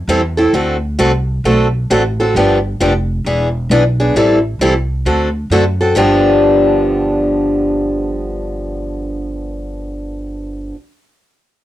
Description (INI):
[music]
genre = acoustic string swing (jazz manouche)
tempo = 133 BPM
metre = 4/4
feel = swing 64% on 8ths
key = G mixolydian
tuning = A4 = 438 Hz
[part]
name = upright bass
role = bass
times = 0.0-10.7 s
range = E1 to F#2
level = -19 LUFS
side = equal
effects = none
[part]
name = picked steel-string acoustic guitar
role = accompaniment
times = 0.1-10.8 s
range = G2 to A4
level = -14 LUFS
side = equal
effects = cassette tape
[sound]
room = moderate small room ambience, RT60 0.5 s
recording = home recording on cassette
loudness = -12 LUFS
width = side -13 dB against mid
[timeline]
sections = 0.0-6.0 A section; 6.0-9.6 B section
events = none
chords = 0.0 Am7; 0.5 D7; 2.4 G7; 3.3 E7; 4.2 Am7; 5.1 D7; 6.0 G7